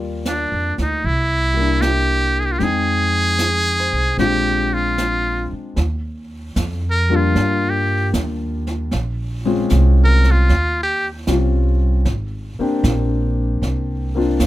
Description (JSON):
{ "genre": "jazz ballad", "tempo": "76 BPM", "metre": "4/4", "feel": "swing 68% on 8ths", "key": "Eb major", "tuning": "A4 = 439 Hz", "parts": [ { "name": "warm concert grand piano", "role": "accompaniment", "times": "0.0-14.5 s", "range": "G3 to G5", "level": "-22 LUFS", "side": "left 4 dB", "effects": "none" }, { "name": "upright bass", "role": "bass", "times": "0.0-14.5 s", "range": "Ab1 to G2", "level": "-19 LUFS", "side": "right 1 dB", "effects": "none" }, { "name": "trumpet with metal mute", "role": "melody", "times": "0.3-11.1 s", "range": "D4 to Bb4", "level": "-19 LUFS", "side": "equal", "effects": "none" }, { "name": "jazz brush drum kit", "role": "drums", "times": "0.3-14.5 s", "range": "brushed snare drum, hi-hat, snare drum", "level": "-26 LUFS", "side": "right 2 dB", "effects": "none" } ], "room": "little or no reverb", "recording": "close, detailed microphones", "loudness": "-16 LUFS", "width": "side -15 dB against mid", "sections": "0.0-5.8 A section; 5.8-14.5 B section", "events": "muted trumpet solo 5.8-14.5", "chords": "0.0 Ebmaj9; 1.0 C7; 2.6 Fm7; 4.2 Bb7; 5.8 Ebmaj9; 8.9 Bbm9; 10.5 Eb13; 12.1 Abmaj9#11", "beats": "0.25 1.03 1.82 | 2.60 3.39 4.18 4.97 | 5.77 6.56 7.35 8.14 | 8.92 9.71 10.49 11.28 | 12.06 12.84 13.62 14.40" }